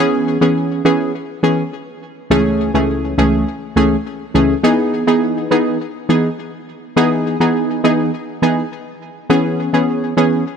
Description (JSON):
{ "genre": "dancehall", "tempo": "103 BPM", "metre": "4/4", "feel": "straight", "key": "unclear", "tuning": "A4 = 439 Hz", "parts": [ { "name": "synth brass stab", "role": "solo", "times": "0.0-10.4 s", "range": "C#2 to G#4", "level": "-14 LUFS", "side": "equal", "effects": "chorus" } ], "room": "light reverb", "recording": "none", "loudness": "-14 LUFS", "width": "side -7 dB against mid", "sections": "0.0-10.6 A section", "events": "none", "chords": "0.0 C#m7; 2.3 Amaj7/C#; 4.6 Emaj7; 9.3 C#m7" }